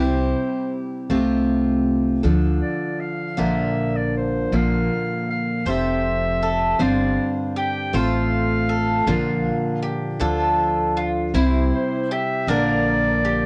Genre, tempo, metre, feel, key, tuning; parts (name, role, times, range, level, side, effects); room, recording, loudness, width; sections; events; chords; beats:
acoustic folk duo or small band; 53 BPM (dotted quarters); 6/8; straight; A4 = 440 Hz
clear clarinet; second line; 0.0-13.5 s; C5 to G5; -28 LUFS; equal; cassette tape
picked steel-string acoustic guitar; accompaniment; 0.0-13.5 s; G2 to C5; -24 LUFS; equal; cassette tape
upright bass; bass; 0.0-13.5 s; F1 to D2; -27 LUFS; equal
bowl-back mandolin; arpeggios; 5.7-13.5 s; E4 to C5; -28 LUFS; equal; cassette tape
moderate small room reverb, RT60 0.5 s; home recording on cassette; -21 LUFS; mono
0.0-13.5 A section
clarinet solo 0.0-13.5
0.0 C; 1.1 Fadd9/C; 2.2 Dm; 3.4 Bb; 5.7 Fadd9; 6.8 Csus2/G; 7.9 F/A; 9.1 Bb; 10.2 Dm; 11.4 C; 12.5 Bb
| 1.11 2.25 | 3.38 4.52 | 5.66 6.80 | 7.94 9.08 | 10.21 11.35 | 12.49